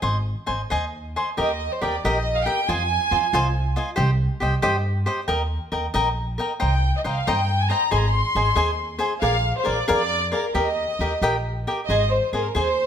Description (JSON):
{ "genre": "mexican folk, mariachi", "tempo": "91 BPM (dotted quarters)", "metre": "6/8", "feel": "straight", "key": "Eb major", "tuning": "A4 = 441 Hz", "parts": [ { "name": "cavaquinho", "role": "accompaniment", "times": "0.0-12.7 s", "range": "F4 to C6", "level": "-24 LUFS", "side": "left 1 dB", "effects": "none" }, { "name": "upright bass", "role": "bass", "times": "0.0-12.9 s", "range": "Ab1 to G2", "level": "-24 LUFS", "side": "equal", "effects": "none" }, { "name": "warm studio violin section", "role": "melody", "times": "1.4-3.8, 6.6-12.9 s", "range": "Bb4 to C6", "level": "-23 LUFS", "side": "right 1 dB", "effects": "none" } ], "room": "light reverb", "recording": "none", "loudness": "-20 LUFS", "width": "side -8 dB against mid", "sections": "0.0-1.4 A section; 1.4-11.9 B section", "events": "none", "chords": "0.0 Ab; 1.4 Eb; 2.7 Fm7; 4.0 Cm; 5.3 Eb; 6.6 Cm7; 7.9 Ab; 9.2 Bb7; 10.5 Eb; 11.9 Ab" }